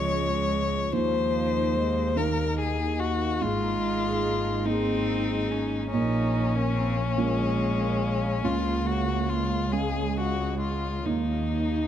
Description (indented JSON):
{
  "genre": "neoclassical piano and strings",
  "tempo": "48 BPM (dotted quarters)",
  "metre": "6/8",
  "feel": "rubato",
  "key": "unclear",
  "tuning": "A4 = 440 Hz",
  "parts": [
    { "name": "clear violin", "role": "melody", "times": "0.0-11.9 s", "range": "Db4 to Db5", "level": "-29 LUFS", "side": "left 5 dB", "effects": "none" },
    { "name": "rich cello", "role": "second line", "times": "0.0-11.9 s", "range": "Eb3 to Eb4", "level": "-32 LUFS", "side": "right 4 dB", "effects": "none" },
    { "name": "felt-muted upright piano", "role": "accompaniment", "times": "0.0-11.9 s", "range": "Db2 to F5", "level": "-30 LUFS", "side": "right 3 dB", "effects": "none" },
    { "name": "warbly tape-like pad", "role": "sustained chords", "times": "0.0-11.9 s", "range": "Ab3 to F5", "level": "-39 LUFS", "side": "right 1 dB", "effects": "none" },
    { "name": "rich double bass", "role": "bass", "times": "0.0-11.9 s", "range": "Ab1 to Eb2", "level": "-30 LUFS", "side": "equal", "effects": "none" },
    { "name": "marimba with soft mallets", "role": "arpeggios", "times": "0.1-11.9 s", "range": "Db4 to Bb5", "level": "-36 LUFS", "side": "left 1 dB", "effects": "none" }
  ],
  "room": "moderate scoring stage reverb, RT60 1.8 s",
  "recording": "dark, warm production",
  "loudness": "-24 LUFS",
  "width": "side -10 dB against mid",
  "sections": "0.0-11.9 A section",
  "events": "none",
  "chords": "0.0 Db; 0.9 Ebsus2; 3.4 Absus2; 5.9 Bbm; 8.4 Db; 11.1 Ebsus2"
}